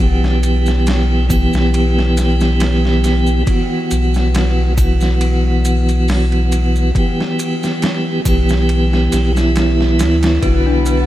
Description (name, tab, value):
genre	trip hop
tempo	69 BPM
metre	4/4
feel	swing 54% on 16ths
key	unclear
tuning	A4 = 440 Hz
part	tonewheel organ	accompaniment	0.0-11.1 s	D3 to G4	-16 LUFS	right 1 dB	stopped rotary speaker, tremolo, vintage 12-bit sampler grit, tape echo
part	warm sub bass	bass	0.0-11.1 s	B1 to D2	-15 LUFS	equal	none
part	boom bap sampler-style drum kit	drums	0.2-11.1 s	hi-hat, kick drum, ride cymbal, snare drum	-21 LUFS	equal	overdrive, studio reverb
part	maracas and triangle	percussion	0.4-11.0 s	none	-33 LUFS	right 1 dB	none
part	dark studio violin section	sustained chords	10.4-11.1 s	B3 to B4	-23 LUFS	left 2 dB	none
part	worn celesta	arpeggios	10.4-11.1 s	D4 to B4	-20 LUFS	left 9 dB	tape echo
room	moderate huge ambient reverb, RT60 7.7 s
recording	dreamy mix soaked in reverb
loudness	-12 LUFS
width	side -14 dB against mid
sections	0.0-11.1 A section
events	none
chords	0.0 Em/B; 3.5 F#7sus4/B; 6.9 G6; 10.4 Bm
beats	0.86 1.73 2.60 | 3.47 4.34 5.21 6.08 | 6.95 7.82 8.69 9.56 | 10.43